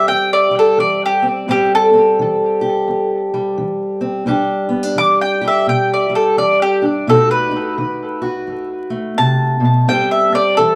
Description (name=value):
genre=acoustic country blues, solo or duo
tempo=86 BPM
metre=4/4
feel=swing 62% on 8ths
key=unclear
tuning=A4 = 440 Hz
part: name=mandolin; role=melody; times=0.0-10.8 s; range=G4 to D6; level=-16 LUFS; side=equal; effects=tape echo
part: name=fingerpicked steel-string acoustic guitar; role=accompaniment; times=0.0-10.8 s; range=E2 to G4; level=-20 LUFS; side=equal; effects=none
room=wet small room reverb, RT60 0.5 s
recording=heard from further back in the room, vinyl crackle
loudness=-16 LUFS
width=mono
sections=0.0-10.8 A section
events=mandolin solo 0.0-10.8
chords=0.0 Am7; 4.3 Em7; 7.1 B7; 9.9 Am7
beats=0.07 0.77 | 1.47 2.17 2.88 3.58 | 4.28 4.98 5.68 6.38 | 7.08 7.78 8.48 9.18 | 9.87 10.57